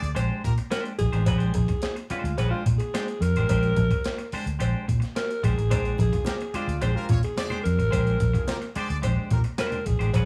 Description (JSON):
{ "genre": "funk", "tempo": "108 BPM", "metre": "4/4", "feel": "straight", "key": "Bb mixolydian", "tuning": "A4 = 439 Hz", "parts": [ { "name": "clear horn section", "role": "second line", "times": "0.0-0.5, 6.1-9.4 s", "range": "D4 to D5", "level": "-40 LUFS", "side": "equal", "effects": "none" }, { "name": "semi-hollow electric guitar", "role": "accompaniment", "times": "0.0-10.3 s", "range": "Ab3 to C5", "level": "-36 LUFS", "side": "equal", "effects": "none" }, { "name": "vintage muted fingered electric bass", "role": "bass", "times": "0.0-10.3 s", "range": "A1 to Bb2", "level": "-26 LUFS", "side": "equal", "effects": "none" }, { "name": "breakbeat sampler-style drum kit", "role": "drums", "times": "0.0-10.3 s", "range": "hi-hat, kick drum, snare drum", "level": "-30 LUFS", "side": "equal", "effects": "none" }, { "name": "cowbell", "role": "percussion", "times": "0.2-10.3 s", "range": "none", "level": "-39 LUFS", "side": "equal", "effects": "none" }, { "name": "breathy alto saxophone", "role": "melody", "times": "0.7-10.3 s", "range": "F4 to Bb4", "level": "-32 LUFS", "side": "equal", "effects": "none" }, { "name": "congas", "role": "percussion", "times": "6.0-9.8 s", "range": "none", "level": "-37 LUFS", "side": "equal", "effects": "none" } ], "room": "little or no reverb", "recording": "studio ambience", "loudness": "-25 LUFS", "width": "mono", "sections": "0.0-10.3 A section", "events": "none", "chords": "0.0 Bb13" }